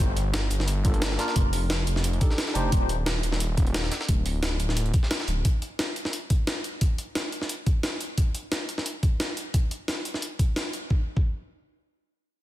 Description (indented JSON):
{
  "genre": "liquid drum and bass",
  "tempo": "176 BPM",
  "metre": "4/4",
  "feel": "swing 53% on 16ths",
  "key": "G minor",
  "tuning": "A4 = 440 Hz",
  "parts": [
    { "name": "swelling detuned saw bass", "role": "bass", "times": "0.0-5.4 s", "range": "D1 to G1", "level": "-26 LUFS", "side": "equal", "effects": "none" },
    { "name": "breakbeat sampler-style drum kit", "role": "drums", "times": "0.0-10.8 s", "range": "hi-hat, snare drum", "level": "-30 LUFS", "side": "equal", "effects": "studio reverb" },
    { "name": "electronic kick drum", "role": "drums", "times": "0.0-11.3 s", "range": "none", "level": "-23 LUFS", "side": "equal", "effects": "studio reverb" },
    { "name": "breakbeat sampler-style drum kit", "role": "drums", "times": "0.2-5.4 s", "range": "hi-hat, snare drum", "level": "-34 LUFS", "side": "right 2 dB", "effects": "high-pass filter on hats, studio reverb, high-pass filter on snare" },
    { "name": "barky tine electric piano", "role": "accompaniment", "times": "0.8-2.7 s", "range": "Bb3 to C5", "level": "-32 LUFS", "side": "left 1 dB", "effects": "ping-pong delay" }
  ],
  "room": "light reverb",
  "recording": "dense, heavily limited modern master",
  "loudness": "-24 LUFS",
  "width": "side -15 dB against mid",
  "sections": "0.0-10.9 A section; 10.9-12.4 B section",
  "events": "none",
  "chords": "0.0 Gm9; 1.4 F13; 2.7 N.C."
}